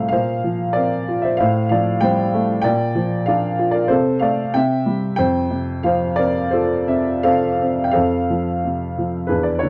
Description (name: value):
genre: classical, lyrical solo piano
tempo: 82-96 BPM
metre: 4/4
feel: rubato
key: F major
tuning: A4 = 440 Hz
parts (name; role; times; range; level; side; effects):
- warm upright piano; solo; 0.0-9.7 s; C2 to G5; -19 LUFS; equal; none
room: moderate studio ambience, RT60 0.5 s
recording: dark, warm production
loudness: -19 LUFS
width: mono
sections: 0.0-8.0 A section; 8.0-9.7 B section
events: none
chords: 0.1 Bbsus2; 1.4 Fadd9/A; 2.6 Bb; 3.9 F/C; 4.5 C; 5.2 F